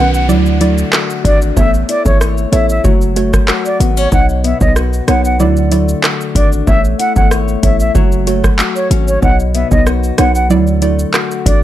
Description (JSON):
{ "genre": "dancehall", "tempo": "94 BPM", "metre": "4/4", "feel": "straight", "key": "unclear", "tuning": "A4 = 440 Hz", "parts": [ { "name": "mellow silver concert flute", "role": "melody", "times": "0.0-11.6 s", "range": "C#5 to F#5", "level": "-18 LUFS", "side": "equal", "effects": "digital delay" }, { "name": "soft round pluck", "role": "accompaniment", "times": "0.0-11.0 s", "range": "D#3 to D5", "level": "-17 LUFS", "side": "right 4 dB", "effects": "chorus, sidechain pumping" }, { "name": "fingerpicked acoustic archtop guitar", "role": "arpeggios", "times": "0.0-11.6 s", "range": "B2 to C#5", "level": "-20 LUFS", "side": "left 9 dB", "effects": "digital delay" }, { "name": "hard-hitting 808-style bass", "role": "bass", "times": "0.0-11.6 s", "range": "F#1 to D2", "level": "-14 LUFS", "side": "equal", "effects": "none" }, { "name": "downlifter", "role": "sound effects", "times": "0.0-4.1 s", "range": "none", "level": "-30 LUFS", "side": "equal", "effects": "none" }, { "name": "booming analog drum machine", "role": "drums", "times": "0.1-11.6 s", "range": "handclaps, hi-hat, kick drum, rim click, shaker", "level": "-14 LUFS", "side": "equal", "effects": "none" } ], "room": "digital ambience", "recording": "none", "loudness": "-10 LUFS", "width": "side -13 dB against mid", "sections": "0.0-11.6 A section", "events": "none", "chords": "0.3 Dadd9; 1.6 Aadd9; 2.8 F#m; 4.1 Badd9; 5.4 Dadd9; 6.7 Aadd9; 8.0 F#m; 9.2 Badd9; 10.5 Dadd9", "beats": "0.29 0.93 | 1.57 2.21 2.84 3.48 | 4.12 4.76 5.40 6.04 | 6.67 7.31 7.95 8.59 | 9.23 9.87 10.50 11.14" }